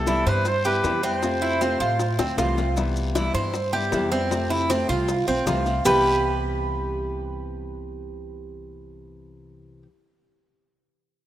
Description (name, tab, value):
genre	latin, Cuban son and guajira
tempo	156 BPM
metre	4/4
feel	straight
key	C major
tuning	A4 = 442 Hz
part	warm trumpet	melody	0.0-2.4 s	A4 to C5	-27 LUFS	equal	none
part	nylon-string guitar	accompaniment	0.0-9.9 s	C3 to F4	-30 LUFS	left 4 dB	none
part	upright bass	bass	0.0-9.8 s	B1 to A2	-28 LUFS	equal	none
part	Cuban tres	arpeggios	0.1-9.8 s	C4 to C5	-24 LUFS	right 2 dB	none
part	bongos	percussion	0.1-5.9 s	none	-31 LUFS	left 6 dB	none
part	guiro	percussion	0.1-5.9 s	none	-42 LUFS	left 2 dB	none
part	maracas	percussion	0.1-5.9 s	none	-38 LUFS	left 3 dB	none
room	moderate lush hall reverb, RT60 2.9 s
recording	rough home demo mix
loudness	-21 LUFS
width	side -12 dB against mid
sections	0.0-2.8 A section; 2.8-5.9 B section; 5.9-8.9 C section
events	drum fill 2.2-2.8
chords	0.0 Cmaj7; 1.2 Fmaj7; 2.8 Cmaj7; 4.3 Fmaj7; 5.9 Cmaj7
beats	0.07 0.46 0.84 | 1.23 1.61 2.00 2.38 | 2.77 3.16 3.54 3.93 | 4.31 4.70 5.08 5.47 | 5.86 6.24 6.63 7.01 | 7.40 7.78 8.17 8.56